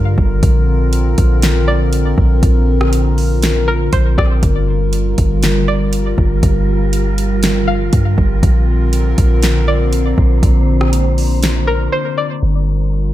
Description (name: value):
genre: hip hop, atmospheric cloud-rap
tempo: 120 BPM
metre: 4/4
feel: half-time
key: unclear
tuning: A4 = 440 Hz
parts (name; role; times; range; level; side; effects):
- string-like resonator pluck; melody; 0.0-12.4 s; Bb4 to F5; -21 LUFS; left 1 dB; chorus, low-pass filter, digital delay
- dark analog pad; sustained chords; 0.0-13.1 s; D3 to C5; -18 LUFS; left 1 dB; chorus, sidechain pumping
- warm 808-style bass; bass; 0.0-13.1 s; G1 to G2; -14 LUFS; equal; none
- smooth R&B drum kit; drums; 0.2-11.5 s; hi-hat, kick drum, rim click, snare drum; -17 LUFS; equal; none
- wind-like tuned noise texture; texture; 5.1-13.1 s; G3 to C5; -27 LUFS; equal; built-in reverb
room: little or no reverb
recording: low-pass filter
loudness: -12 LUFS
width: side -14 dB against mid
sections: 0.0-12.4 A section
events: break 11.9-12.4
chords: 0.4 Bbadd9; 4.4 Gm7; 8.4 Bbadd9; 12.4 Gm7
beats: | 0.43 0.93 1.43 1.93 | 2.43 2.93 3.43 3.93 | 4.43 4.93 5.43 5.93 | 6.43 6.93 7.43 7.93 | 8.43 8.93 9.43 9.93 | 10.43 10.93 11.43 11.93 | 12.43 12.93